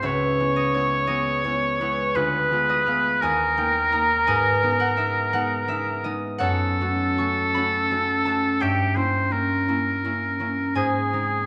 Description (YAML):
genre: classical, romantic duo for oboe and harp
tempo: 57 BPM (dotted quarters)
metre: 6/8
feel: rubato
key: G# minor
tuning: A4 = 440 Hz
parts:
  - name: concert harp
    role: accompaniment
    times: 0.0-11.5 s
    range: C#2 to C#6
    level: -26 LUFS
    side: equal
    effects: none
  - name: clear oboe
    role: melody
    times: 0.1-11.5 s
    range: G4 to C#5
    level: -25 LUFS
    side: equal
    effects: none
room: wet recital hall reverb, RT60 1.4 s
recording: none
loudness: -23 LUFS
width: mono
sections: 0.0-11.5 A section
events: none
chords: 0.0 C#m7; 2.2 Ddim7; 3.2 D#; 4.3 G#m; 6.4 F#m; 8.6 Gdim7; 10.8 G#